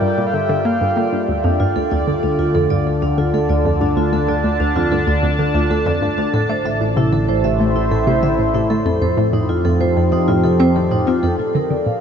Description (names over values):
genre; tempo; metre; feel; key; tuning
ambient, sequencer-driven space music; 95 BPM; 4/4; straight; F major; A4 = 437 Hz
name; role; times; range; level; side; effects
breathy flute-like synth lead; melody; 0.0-1.3 s; D5 to F5; -25 LUFS; left 1 dB; chorus, ping-pong delay
sweeping resonant pad; sustained chords; 0.0-12.0 s; A2 to A5; -20 LUFS; equal; chorus, phaser
hollow square pluck; riff; 0.0-12.0 s; D2 to C4; -19 LUFS; equal; chorus, ping-pong delay
analog drone; bass; 0.0-12.0 s; A1 to G2; -22 LUFS; equal; chorus
bubbling stepped-filter texture; texture; 0.0-11.4 s; D5; -32 LUFS; right 3 dB; chorus, built-in reverb
vibraphone with medium hard mallets; arpeggios; 1.4-12.0 s; D4 to F5; -21 LUFS; moving between left 2 dB and right 4 dB; auto-pan, low-pass filter, ping-pong delay
room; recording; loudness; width
moderate huge ambient reverb, RT60 8.4 s; nothing above 7.7 kHz; -15 LUFS; side -7 dB against mid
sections
0.0-11.4 A section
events
fade-in on synth drone 0.0-11.4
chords
0.0 Gm7; 1.3 Dm; 6.3 Am; 8.9 F7; 11.4 Bbmaj7